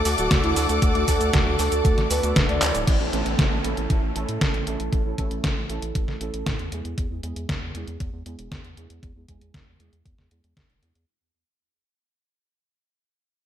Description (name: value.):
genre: italo disco.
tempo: 117 BPM.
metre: 4/4.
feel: straight.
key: A major.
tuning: A4 = 440 Hz.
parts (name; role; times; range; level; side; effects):
soft octave-layered synth lead; melody; 0.0-2.8 s; E4 to D5; -27 LUFS; right 1 dB; chorus, phaser, cassette tape, digital delay.
rich symphonic string section; sustained chords; 0.0-2.8 s; A4 to D6; -28 LUFS; left 2 dB; none.
analog synth brass; stabs; 0.0-11.1 s; E3 to A4; -30 LUFS; right 3 dB; chorus.
round analog bass; bass; 0.0-11.1 s; D1 to A2; -29 LUFS; equal; none.
detuned 8-bit digital drum machine; drums; 0.1-11.1 s; cabasa, crash cymbal, handclaps, hi-hat, snare drum; -26 LUFS; equal; overdrive, gated reverb.
electronic kick drum; drums; 0.3-10.7 s; none; -24 LUFS; equal; overdrive.
downlifter; sound effects; 2.9-7.0 s; none; -33 LUFS; right 2 dB; none.
room: moderate plate reverb, RT60 1.4 s.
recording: bright 1980s-style digital production.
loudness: -21 LUFS.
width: side -10 dB against mid.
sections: 0.0-2.9 A section; 2.9-11.1 B section.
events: drum fill 2.6; fade-out 2.9-11.1; filter sweep on analog polysynth 2.9-11.1.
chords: 0.0 D; 2.9 A; 7.0 E.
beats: 0.31 | 0.82 1.34 1.85 2.36 | 2.88 3.39 3.90 4.41 | 4.93 5.44 5.95 6.46 | 6.98 7.49 8.00 8.52 | 9.03 9.54 10.05 10.57.